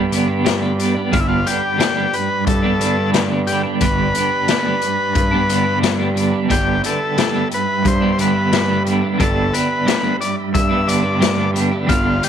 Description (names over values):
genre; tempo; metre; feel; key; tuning
psychedelic rock; 89 BPM; 4/4; straight; G major; A4 = 438 Hz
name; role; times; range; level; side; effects
mellow tonewheel organ; sustained chords; 0.0-12.3 s; G4 to B5; -30 LUFS; right 14 dB; slow rotary speaker
twelve-string electric guitar; riff; 0.0-12.3 s; G2 to D4; -19 LUFS; right 2 dB; tremolo
fuzz fingered electric bass; bass; 0.0-12.2 s; G1 to G2; -21 LUFS; equal; overdrive
raw garage drum kit; drums; 0.1-12.3 s; hi-hat, kick drum, snare drum; -21 LUFS; left 4 dB; none
combo organ; melody; 1.1-12.3 s; E4 to E5; -21 LUFS; left 1 dB; slapback echo
room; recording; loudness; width
small room reverb; 1960s-style stereo; -15 LUFS; side -8 dB against mid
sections
0.0-12.3 A section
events
none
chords
0.0 G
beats
0.45 | 1.12 1.80 2.47 3.14 | 3.81 4.48 5.16 5.83 | 6.50 7.17 7.85 8.52 | 9.19 9.87 10.54 11.21 | 11.89